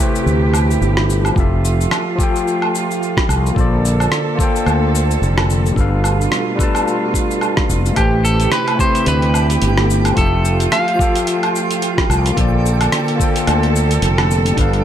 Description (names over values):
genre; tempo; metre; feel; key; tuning
sunset chillout; 109 BPM; 4/4; swing 58% on 16ths; unclear; A4 = 444 Hz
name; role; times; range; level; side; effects
overdriven tine electric piano; accompaniment; 0.0-14.8 s; F3 to A5; -20 LUFS; moving between left 4 dB and right 3 dB; auto-pan, tape echo
rich studio string section; sustained chords; 0.0-14.8 s; B2 to A4; -22 LUFS; right 2 dB; none
dusty soul sampler-style drum kit; drums; 0.2-14.8 s; hi-hat, rim click, shaker, woodblock; -21 LUFS; equal; overdrive
fretless electric bass; bass; 0.3-14.8 s; F1 to D2; -16 LUFS; equal; none
electronic kick drum; drums; 1.4-14.7 s; none; -18 LUFS; equal; overdrive
clean electric guitar; melody; 8.0-11.5 s; G4 to F5; -20 LUFS; equal; tape echo
twinkling granular texture; texture; 9.0-14.8 s; G5; -29 LUFS; right 3 dB; built-in reverb
room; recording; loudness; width
light reverb, digital ambience; none; -13 LUFS; side -10 dB against mid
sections
0.0-14.8 A section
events
none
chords
0.0 Am7; 1.4 Fmaj7; 3.6 Bbmaj7; 5.8 G9; 8.0 Am7; 10.2 Fmaj7; 12.4 Bbmaj7